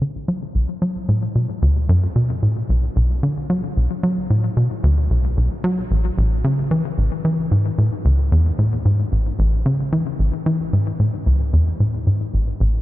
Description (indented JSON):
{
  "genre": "ambient",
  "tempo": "112 BPM",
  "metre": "4/4",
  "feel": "straight",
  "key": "B dorian",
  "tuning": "A4 = 439 Hz",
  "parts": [
    { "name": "tight sequencer bass", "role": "solo", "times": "0.0-12.8 s", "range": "A1 to F#3", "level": "-17 LUFS", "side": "equal", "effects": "ping-pong delay" }
  ],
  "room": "light reverb",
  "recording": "none",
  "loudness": "-17 LUFS",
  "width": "side -16 dB against mid",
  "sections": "0.0-12.8 A section",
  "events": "none",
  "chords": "none",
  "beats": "0.01 0.55 1.09 | 1.62 2.16 2.69 3.23 | 3.77 4.30 4.84 5.37 | 5.91 6.44 6.98 7.51 | 8.05 8.59 9.12 9.66 | 10.19 10.73 11.27 11.80 | 12.34"
}